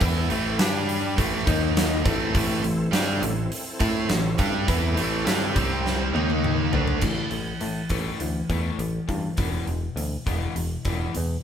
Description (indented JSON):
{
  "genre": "classic rock",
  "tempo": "103 BPM",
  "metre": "4/4",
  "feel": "straight",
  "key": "A minor",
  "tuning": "A4 = 441 Hz",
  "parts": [
    { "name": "bright tonewheel organ", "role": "sustained chords", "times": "0.0-6.7 s", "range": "G3 to D#5", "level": "-34 LUFS", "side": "left 2 dB", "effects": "slow rotary speaker, overdrive, chorus vibrato" },
    { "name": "cranked stack guitar", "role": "riff", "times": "0.0-7.0 s", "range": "A2 to A4", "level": "-27 LUFS", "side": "right 6 dB", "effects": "overdrive" },
    { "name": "overdriven electric guitar", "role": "riff", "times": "0.0-11.4 s", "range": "E2 to A4", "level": "-29 LUFS", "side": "left 5 dB", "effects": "none" },
    { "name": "picked electric bass", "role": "bass", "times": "0.0-11.4 s", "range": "E1 to A2", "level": "-28 LUFS", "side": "equal", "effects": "none" },
    { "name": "huge arena drum kit", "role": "drums", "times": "0.0-11.3 s", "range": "crash cymbal, hi-hat, kick drum, snare drum, toms", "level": "-27 LUFS", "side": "equal", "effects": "none" }
  ],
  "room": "moderate stone room reverb, RT60 1.1 s",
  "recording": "band playing live in one room",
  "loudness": "-22 LUFS",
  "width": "side -8 dB against mid",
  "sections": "0.0-7.0 A section; 7.0-11.4 B section",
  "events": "drum fill 5.9-7.0",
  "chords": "0.0 Am; 0.6 G5; 1.2 A5; 1.5 D#5; 2.1 Am; 5.6 C5; 6.1 D#5; 6.7 D5; 7.0 A5; 9.4 E5",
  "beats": "| 0.02 0.60 1.19 1.77 | 2.35 2.94 3.52 4.10 | 4.69 5.27 5.86 6.44 | 7.03 7.61 8.20 8.79 | 9.38 9.97 10.55 11.14"
}